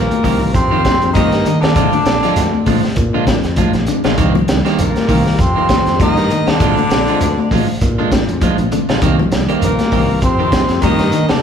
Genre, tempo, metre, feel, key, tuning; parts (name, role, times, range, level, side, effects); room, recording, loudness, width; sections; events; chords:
afrobeat; 99 BPM; 4/4; swing 56% on 16ths; C minor; A4 = 440 Hz
trombone with metal mute; melody; 0.0-11.4 s; Bb3 to Eb4; -19 LUFS; equal
edgy alto saxophone; second line; 0.0-11.4 s; Bb4 to Eb5; -24 LUFS; right 1 dB
raspy baritone saxophone; second line; 0.0-11.4 s; Bb2 to Eb3; -24 LUFS; left 4 dB
bright reed electric piano; accompaniment; 0.0-11.4 s; Eb3 to D4; -24 LUFS; right 2 dB; fast tremolo
clean electric guitar; arpeggios; 0.0-11.4 s; C3 to G3; -21 LUFS; left 3 dB
modern bright fingered electric bass; bass; 0.0-11.4 s; Bb1 to Bb2; -20 LUFS; left 1 dB
electric guitar at the edge of break-up; stabs; 0.1-11.4 s; Eb3 to G4; -21 LUFS; right 4 dB
crunchy breakbeat drum kit; drums; 0.1-11.4 s; hi-hat, kick drum, snare drum; -18 LUFS; equal
congas; percussion; 0.1-11.0 s; -22 LUFS; left 3 dB
shekere; percussion; 0.1-11.4 s; -24 LUFS; right 1 dB
moderate large studio reverb, RT60 1.3 s; band playing live in one room; -12 LUFS; side -7 dB against mid
0.0-11.4 A section
0.0 Cm7; 1.8 Bb7; 4.2 Cm7; 6.6 Bb7; 9.0 Cm7